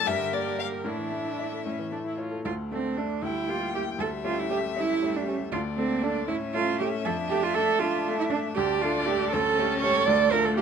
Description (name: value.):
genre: quick classical-period movement for piano quartet.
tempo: 78 BPM (dotted quarters).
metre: 6/8.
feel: straight.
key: D minor.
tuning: A4 = 439 Hz.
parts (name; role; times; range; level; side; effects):
dark violin; melody; 0.0-10.6 s; A4 to G5; -32 LUFS; left 8 dB; none.
dark cello; second line; 0.0-10.6 s; C4 to D5; -27 LUFS; right 7 dB; none.
warm baby grand piano; accompaniment; 0.0-10.6 s; D2 to D5; -31 LUFS; left 3 dB; none.
warm viola; accompaniment; 0.0-10.6 s; G3 to Bb4; -34 LUFS; right 2 dB; none.
room: light reverb.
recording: close, detailed microphones.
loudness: -24 LUFS.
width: side -7 dB against mid.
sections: 0.0-2.5 A section; 2.5-10.6 B section.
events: none.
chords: 0.1 Gm; 0.9 Asus4; 1.7 A; 2.5 D5; 3.2 Em7b5/D; 4.0 A7/D; 5.5 D5; 6.3 A; 7.1 Dm/F; 8.6 D5; 9.3 A7/D; 10.1 Dm.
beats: 0.07 | 0.86 1.66 | 2.46 3.23 | 4.00 4.77 | 5.53 6.29 | 7.06 7.82 | 8.57 9.33 | 10.08.